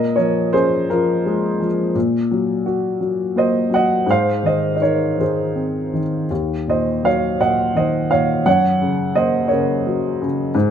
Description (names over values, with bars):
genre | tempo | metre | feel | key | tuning
classical, lyrical solo piano | 56 BPM (dotted quarters) | 6/8 | rubato | unclear | A4 = 441 Hz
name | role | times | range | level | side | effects
dark upright piano | solo | 0.0-10.7 s | Eb2 to Gb5 | -16 LUFS | equal | none
room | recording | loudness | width
light reverb | close, detailed microphones | -16 LUFS | side -8 dB against mid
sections
0.0-10.7 A section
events
none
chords
0.0 Bbm7; 1.9 Ebm/Bb; 4.1 Ab; 6.3 Ebm; 8.5 Gb